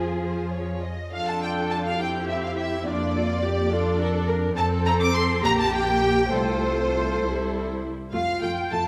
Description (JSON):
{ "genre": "quick classical-period movement for string orchestra", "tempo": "68 BPM (dotted quarters)", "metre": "6/8", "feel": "rubato", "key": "F major", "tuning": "A4 = 440 Hz", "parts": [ { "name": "rich studio violin section", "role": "melody", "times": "0.0-8.9 s", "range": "C5 to D6", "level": "-30 LUFS", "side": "equal", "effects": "none" }, { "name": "rich studio violin section", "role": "second line", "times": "0.0-8.9 s", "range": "Ab4 to D6", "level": "-33 LUFS", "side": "equal", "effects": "none" }, { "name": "rich studio viola section", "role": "accompaniment", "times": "0.0-8.8 s", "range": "G3 to Bb4", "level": "-31 LUFS", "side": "equal", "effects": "none" }, { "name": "rich studio double bass section", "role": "bass", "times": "0.0-8.8 s", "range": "Bb1 to F2", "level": "-31 LUFS", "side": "equal", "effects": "none" }, { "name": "warm studio cello section", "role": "bass", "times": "0.0-8.9 s", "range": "F3 to Bb4", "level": "-32 LUFS", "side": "equal", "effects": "none" } ], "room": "wet concert hall reverb, RT60 2.2 s", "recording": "none", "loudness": "-24 LUFS", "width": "mono", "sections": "0.0-1.1 A section; 1.1-8.9 A section", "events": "none", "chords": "0.0 Fm; 1.1 F; 2.9 Bb/F; 4.6 F; 5.4 Gm/Bb; 6.3 F/C; 7.2 C; 8.1 F" }